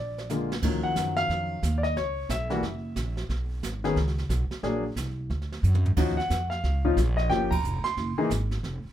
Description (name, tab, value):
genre	jazz piano trio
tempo	180 BPM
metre	4/4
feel	swing 62% on 8ths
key	unclear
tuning	A4 = 439 Hz
part	clear baby grand piano	melody	0.0-8.3 s	D3 to C6	-27 LUFS	left 2 dB	none
part	upright bass	bass	0.0-8.9 s	F1 to Gb2	-28 LUFS	right 1 dB	none
part	jazz brush drum kit	drums	0.2-8.9 s	brushed snare drum, crash cymbal, hi-hat, kick drum, ride cymbal, snare drum, toms	-33 LUFS	right 3 dB	none
room	moderate club reverb, RT60 0.6 s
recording	minimal, uncompressed stereo recording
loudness	-25 LUFS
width	side -11 dB against mid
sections	0.6-8.9 A section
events	drum fill 0.0-0.6, 5.6-6.0; band accent 7.5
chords	0.0 Bb7; 0.6 Ebm9; 2.0 Dbm7; 2.6 Gb7; 3.3 Bsus2; 4.6 Bbaug; 6.0 Ebm9; 7.3 Gm7b5; 8.0 Gbsus2